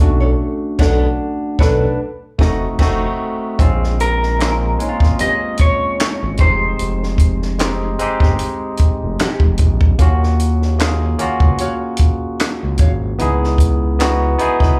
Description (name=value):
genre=R&B, neo-soul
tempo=75 BPM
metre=4/4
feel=swing 53% on 16ths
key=Bb minor from 3.6 s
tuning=A4 = 441 Hz
part: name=barky tine electric piano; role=accompaniment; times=0.0-14.8 s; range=Ab3 to F#5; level=-23 LUFS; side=equal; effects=overdrive, slapback echo
part: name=smooth synth bass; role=bass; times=0.0-14.8 s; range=F1 to Eb2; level=-20 LUFS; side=equal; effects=none
part: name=nylon-string guitar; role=second line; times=0.2-14.7 s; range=Ab3 to F5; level=-26 LUFS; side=equal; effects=slapback echo
part: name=compact cocktail drum kit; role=drums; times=0.8-14.8 s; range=crash cymbal, handclaps, hi-hat, kick drum, snare drum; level=-17 LUFS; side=equal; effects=none
part: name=mellow electric guitar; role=melody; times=4.0-9.6 s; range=Bb4 to Eb5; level=-22 LUFS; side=equal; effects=slapback echo
room=little or no reverb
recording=live gig heard through the venue's PA, club reverb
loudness=-16 LUFS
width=mono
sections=0.0-3.6 A section; 3.6-14.8 B section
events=band accent 0.4-3.6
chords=0.0 Bm9; 2.0 F7b9; 3.6 Bbm9; 6.4 Fm9; 10.0 Ebm9; 13.2 Dbm9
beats=| 0.39 1.19 1.99 2.79 | 3.59 4.39 5.19 5.99 | 6.79 7.59 8.39 9.19 | 9.99 10.79 11.59 12.39 | 13.19 13.99 14.79